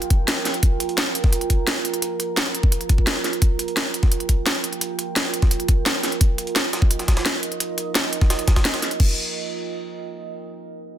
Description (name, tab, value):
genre	dark technical drum and bass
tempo	172 BPM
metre	4/4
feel	straight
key	unclear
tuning	A4 = 442 Hz
part	deep dark ambient pad	sustained chords	0.0-9.2 s	F4 to Bb5	-28 LUFS	right 5 dB	chorus, built-in reverb, sidechain pumping
part	drum and bass drum kit	drums	0.0-9.1 s	crash cymbal, hi-hat, snare drum	-22 LUFS	equal	none
part	electronic kick drum	drums	0.1-9.1 s	none	-18 LUFS	equal	none
part	jungle sampler-style drum kit	drums	0.1-9.0 s	hi-hat, snare drum	-31 LUFS	right 1 dB	none
room	light reverb, digital ambience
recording	dense, heavily limited modern master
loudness	-19 LUFS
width	side -11 dB against mid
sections	0.0-9.0 A section; 9.0-10.4 B section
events	none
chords	0.0 Fsus2